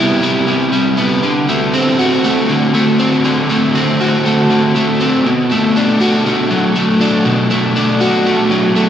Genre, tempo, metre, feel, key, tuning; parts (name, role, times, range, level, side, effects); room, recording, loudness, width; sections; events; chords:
rock; 120 BPM; 4/4; straight; A4 = 440 Hz
overdriven electric guitar; solo; 0.0-8.9 s; B2 to F#4; -11 LUFS; equal; wide subtle chorus, analog delay
wet huge ambient reverb, RT60 8.0 s; dreamy mix soaked in reverb; -11 LUFS; side -9 dB against mid
0.0-8.9 A section
0.0 Cmaj7; 1.2 D7; 5.2 Bm7